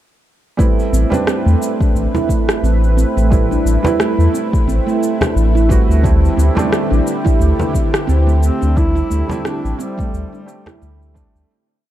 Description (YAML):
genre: organic downtempo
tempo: 88 BPM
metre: 4/4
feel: swing 57% on 16ths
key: A minor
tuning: A4 = 440 Hz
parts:
  - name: felt-muted upright piano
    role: accompaniment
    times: 0.6-11.5 s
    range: G3 to B4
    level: -24 LUFS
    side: right 4 dB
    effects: sidechain pumping, ping-pong delay
  - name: warm analog pad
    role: sustained chords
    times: 0.6-11.5 s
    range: D3 to B4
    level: -23 LUFS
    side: left 1 dB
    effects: chorus, sidechain pumping
  - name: handpan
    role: arpeggios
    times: 0.6-11.5 s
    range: A3 to E4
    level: -20 LUFS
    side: right 4 dB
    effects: low-pass filter, ping-pong delay
  - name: electronic kick drum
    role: drums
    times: 0.6-11.3 s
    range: none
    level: -16 LUFS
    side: equal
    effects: none
  - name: electronic shaker and rim click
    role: drums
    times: 0.6-11.5 s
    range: none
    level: -22 LUFS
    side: left 1 dB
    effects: none
  - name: warm sub bass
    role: bass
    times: 0.9-11.4 s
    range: A1 to E2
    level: -14 LUFS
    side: equal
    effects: tube saturation
  - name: frame drum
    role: percussion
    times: 1.1-10.8 s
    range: none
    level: -21 LUFS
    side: equal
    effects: none
  - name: mellow duduk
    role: melody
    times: 8.4-11.2 s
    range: G3 to E4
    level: -25 LUFS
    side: left 1 dB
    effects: none
room: small room ambience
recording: dark, warm production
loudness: -13 LUFS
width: side -12 dB against mid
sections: 0.6-11.5 groove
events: fade-out 7.9-11.5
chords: 0.6 Am7; 6.0 D7sus4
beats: | 0.59 1.27 1.95 2.63 | 3.32 4.00 4.68 5.36 | 6.04 6.73 7.41 8.09 | 8.77 9.45 10.13 10.82